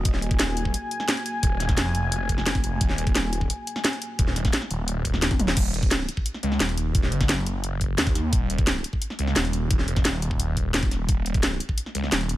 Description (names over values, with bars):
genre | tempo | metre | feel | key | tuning
dark technical drum and bass | 174 BPM | 4/4 | straight | Eb minor | A4 = 440 Hz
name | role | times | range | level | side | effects
dark analog pad | sustained chords | 0.0-5.5 s | Bb3 to Ab5 | -32 LUFS | left 1 dB | chorus, sidechain pumping
phased detuned saw bass | bass | 0.0-12.4 s | Eb1 to Eb2 | -26 LUFS | equal | phaser, overdrive, sidechain pumping
drum and bass drum kit | drums | 0.1-12.4 s | crash cymbal, hi-hat, snare drum, toms | -26 LUFS | equal | none
electronic kick drum | drums | 0.1-11.8 s | none | -24 LUFS | equal | none
room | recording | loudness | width
little or no reverb | none | -22 LUFS | side -15 dB against mid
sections
0.0-5.6 A section; 5.6-12.4 A section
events
drop 0.0-5.6, 5.6-12.4; drum fill 5.3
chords
0.0 Ebm